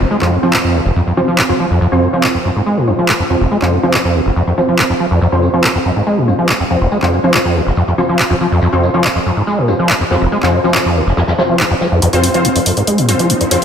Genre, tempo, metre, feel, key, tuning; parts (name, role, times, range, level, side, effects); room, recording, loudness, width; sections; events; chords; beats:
driving peak-time techno; 141 BPM; 4/4; straight; F phrygian; A4 = 440 Hz
overdriven acid bass; riff; 0.0-13.6 s; F1 to Ab3; -13 LUFS; equal; lush chorus, tape echo
rave stab; stabs; 0.0-13.6 s; C4 to C5; -17 LUFS; equal; chorus, built-in reverb, tape echo
downlifter and riser; sound effects; 0.0-1.8, 12.8-13.6 s; -28 LUFS; right 1 dB
warm soul drum kit; drums; 0.1-11.9 s; hi-hat, snare drum, tambourine; -29 LUFS; left 1 dB; high-pass filter on hats, low-pass filter on hats, high-pass filter on snare, low-pass filter on snare, high-pass filter on perc, low-pass filter on perc, high-pass filter on room, low-pass filter on room
techno drum kit; drums; 0.2-13.6 s; handclaps, hi-hat; -18 LUFS; equal; overdrive
wet lush hall reverb, RT60 1.9 s, studio ambience; dreamy mix soaked in reverb; -11 LUFS; side -8 dB against mid
0.0-12.0 A section; 12.0-13.6 B section
build-up 12.0-13.6; filter sweep on acid bass 12.0-13.6; riser 12.8-13.6
0.0 F5
| 0.11 0.54 0.96 1.39 | 1.81 2.24 2.66 3.09 | 3.51 3.94 4.36 4.79 | 5.21 5.64 6.07 6.49 | 6.92 7.34 7.77 8.19 | 8.62 9.04 9.47 9.90 | 10.32 10.75 11.17 11.60 | 12.02 12.45 12.88 13.30